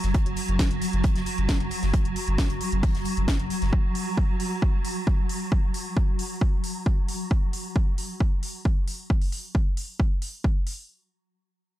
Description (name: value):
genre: driving peak-time techno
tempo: 134 BPM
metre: 4/4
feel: straight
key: unclear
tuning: A4 = 440 Hz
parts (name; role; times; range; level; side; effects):
- saturated sub bass; bass; 0.0-3.7 s; F#1; -28 LUFS; equal; tube saturation, sidechain pumping, low-pass filter
- swarming drone; drone; 0.0-7.4 s; F#3; -30 LUFS; right 1 dB; built-in reverb, sidechain pumping
- natural country drum kit; drums; 0.0-3.7 s; hi-hat, snare drum; -42 LUFS; left 2 dB; high-pass filter on hats, high-pass filter on snare, high-pass filter on room
- techno drum kit; drums; 0.0-10.8 s; hi-hat, snare drum; -34 LUFS; equal; overdrive, sidechain pumping on hats, sidechain pumping on cymbals
- electronic kick drum; drums; 0.1-10.5 s; none; -23 LUFS; equal; overdrive
room: little or no reverb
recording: dark, warm production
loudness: -23 LUFS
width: side -14 dB against mid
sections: 0.0-10.9 A section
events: none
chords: none